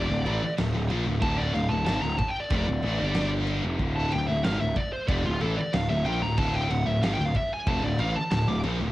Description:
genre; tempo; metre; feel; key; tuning
heavy metal; 93 BPM; 4/4; straight; D minor; A4 = 440 Hz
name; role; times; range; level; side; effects
high-gain lead guitar; melody; 0.0-8.6 s; F4 to D6; -30 LUFS; equal; distortion, cassette tape
scooped high-gain guitar; riff; 0.0-8.9 s; D2 to G3; -32 LUFS; left 4 dB; distortion, cassette tape
scooped high-gain guitar; riff; 0.0-8.9 s; D2 to G3; -34 LUFS; right 6 dB; distortion, cassette tape
fuzz picked electric bass; bass; 0.0-8.9 s; D1 to Bb1; -28 LUFS; equal; overdrive
big rock drum kit; drums; 0.3-8.8 s; crash cymbal, kick drum, snare drum; -32 LUFS; equal; cassette tape
room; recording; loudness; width
little or no reverb; home recording on cassette; -24 LUFS; side -16 dB against mid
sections
0.0-8.9 A section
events
lead electric guitar solo 0.0-8.9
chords
0.0 Dm; 3.0 G5; 3.6 Dm

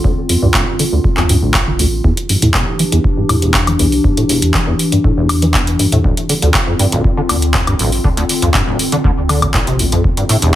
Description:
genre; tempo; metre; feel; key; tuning
acid house; 120 BPM; 4/4; straight; unclear; A4 = 440 Hz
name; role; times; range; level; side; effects
warbly tape-like pad; sustained chords; 0.0-10.6 s; D3 to G4; -19 LUFS; left 1 dB; chorus, built-in reverb, sidechain pumping
deep acid bass; riff; 0.0-10.5 s; D1 to E3; -16 LUFS; equal; overdrive, ensemble chorus, vintage 12-bit sampler grit, digital delay
warm sub bass; bass; 0.0-10.5 s; A1 to E2; -17 LUFS; equal; sidechain pumping
electronic kick drum; drums; 0.0-10.1 s; none; -17 LUFS; equal; none
booming analog drum machine; drums; 0.3-10.5 s; handclaps, hi-hat, woodblock; -17 LUFS; equal; none
room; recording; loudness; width
moderate studio reverb, RT60 0.6 s; heavily compressed radio sound; -11 LUFS; side -13 dB against mid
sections
0.0-10.6 A section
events
none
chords
0.0 Dm7; 2.0 Em7; 6.0 Dm7; 10.0 Em7

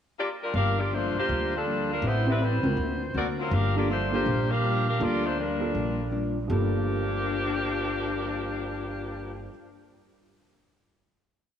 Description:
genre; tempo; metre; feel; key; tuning
jazz; 161 BPM; 4/4; swing 63% on 8ths; G minor; A4 = 439 Hz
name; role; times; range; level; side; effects
bright saxophone section; melody; 0.2-9.5 s; F3 to F5; -28 LUFS; left 1 dB; none
vintage hollow-body jazz guitar; accompaniment; 0.5-10.1 s; G2 to B4; -34 LUFS; left 3 dB; none
upright bass; bass; 0.5-9.5 s; G1 to D2; -30 LUFS; equal; none
warm concert grand piano; accompaniment; 2.3-9.5 s; G2 to B4; -32 LUFS; right 2 dB; none
room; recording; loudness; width
moderate concert hall reverb, RT60 2.4 s; none; -25 LUFS; side -9 dB against mid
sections
0.0-0.5 pickup bar; 0.5-6.5 A section; 6.5-9.5 final chord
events
none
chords
0.0 Gm7; 2.0 Am9; 2.8 D7b13; 3.5 Gm7

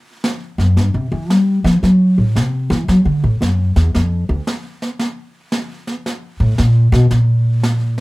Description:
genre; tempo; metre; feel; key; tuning
jazz piano trio; 114 BPM; 4/4; swing 66% on 8ths; unclear; A4 = 439 Hz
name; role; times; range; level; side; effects
snare drum and brushed snare drum; drums; 0.2-8.0 s; none; -22 LUFS; right 1 dB; none
upright bass; bass; 0.6-8.0 s; D2 to G3; -12 LUFS; equal; none
room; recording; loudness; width
little or no reverb; none; -13 LUFS; side -21 dB against mid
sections
0.0-8.0 A section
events
upright bass solo 0.0-8.0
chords
none

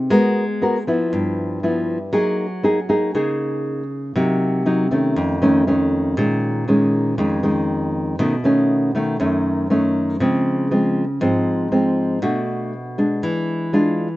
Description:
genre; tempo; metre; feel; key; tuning
bossa nova; 119 BPM; 4/4; straight; Db major; A4 = 440 Hz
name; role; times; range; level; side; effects
nylon-string guitar; solo; 0.0-14.2 s; F2 to Bb4; -17 LUFS; equal; none
room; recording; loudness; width
light reverb; nothing above 8.0 kHz; -17 LUFS; side -17 dB against mid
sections
0.0-10.2 A section; 10.2-14.2 A section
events
none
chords
0.1 Abm9; 1.1 G6; 2.1 Gb69; 4.2 Cm7b5; 5.2 Faug7; 6.2 Bbm7; 8.2 Cb9; 10.2 Dbmaj7; 12.2 Cbm7; 13.2 E7b9

